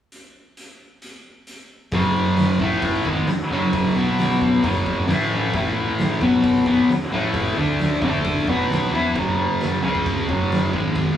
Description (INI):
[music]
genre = garage rock duo or trio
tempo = 133 BPM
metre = 4/4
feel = straight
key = F# minor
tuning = A4 = 440 Hz
[part]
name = oversized low-tuned drum kit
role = drums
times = 0.1-11.1 s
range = crash cymbal, hi-hat, kick drum, snare drum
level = -25 LUFS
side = equal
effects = none
[part]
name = fuzz guitar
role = riff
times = 1.9-11.2 s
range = F#2 to E4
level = -19 LUFS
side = left 1 dB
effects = distortion
[part]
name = overdriven picked electric bass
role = bass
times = 1.9-11.2 s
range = F#1 to E2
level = -29 LUFS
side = right 1 dB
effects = none
[sound]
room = moderate studio reverb, RT60 0.6 s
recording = rough rehearsal-room recording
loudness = -18 LUFS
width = side -10 dB against mid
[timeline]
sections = 0.1-1.9 A section; 1.9-9.2 B section; 9.2-11.2 C section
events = none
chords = 0.1 N.C.; 1.9 F#5; 2.6 A5; 3.1 F#5; 4.0 B5; 4.6 F#5; 5.1 A5; 6.2 B5; 6.7 A5; 7.6 D5; 8.5 B5; 8.9 E5; 9.2 F#5; 9.8 C#5; 10.3 F#5; 10.7 G#5